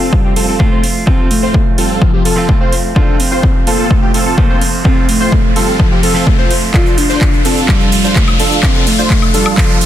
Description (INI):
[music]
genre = EDM, festival progressive house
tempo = 127 BPM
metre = 4/4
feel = straight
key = F major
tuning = A4 = 438 Hz
[part]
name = breathy flute-like synth lead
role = melody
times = 0.0-9.9 s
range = F3 to F4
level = -17 LUFS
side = left 1 dB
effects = lush chorus, ping-pong delay
[part]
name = direct-recorded clean electric guitar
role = accompaniment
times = 0.0-9.9 s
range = F3 to F4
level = -22 LUFS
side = right 3 dB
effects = sidechain pumping
[part]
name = plucky unison lead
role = arpeggios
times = 0.0-9.8 s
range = G4 to C5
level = -23 LUFS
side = right 1 dB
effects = lush chorus, sidechain pumping, ping-pong delay
[part]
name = dense compressed supersaw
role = riff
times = 0.0-9.8 s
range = C4 to C5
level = -19 LUFS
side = right 1 dB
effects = sidechain pumping, low-pass filter
[part]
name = riser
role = sound effects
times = 1.7-9.9 s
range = none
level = -22 LUFS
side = left 1 dB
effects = none
[part]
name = electronic kick drum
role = drums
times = 0.1-9.7 s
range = none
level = -12 LUFS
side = equal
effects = overdrive
[part]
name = house drum kit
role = drums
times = 0.4-9.9 s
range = cabasa, handclaps, hi-hat, woodblock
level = -18 LUFS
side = right 2 dB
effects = high-pass filter on perc, high-pass filter on hats, high-pass filter on snare, high-pass filter on room
[sound]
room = light reverb, digital ambience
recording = dense, heavily limited modern master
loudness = -9 LUFS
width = side -11 dB against mid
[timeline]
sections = 0.0-9.9 A section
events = build-up 0.0-9.9; riser 1.7-9.9; drum fill 6.7-9.9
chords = 0.0 F; 6.7 F69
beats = 0.13 0.60 | 1.07 1.54 2.02 2.49 | 2.96 3.43 3.91 4.38 | 4.85 5.32 5.80 6.27 | 6.74 7.21 7.69 8.16 | 8.63 9.10 9.58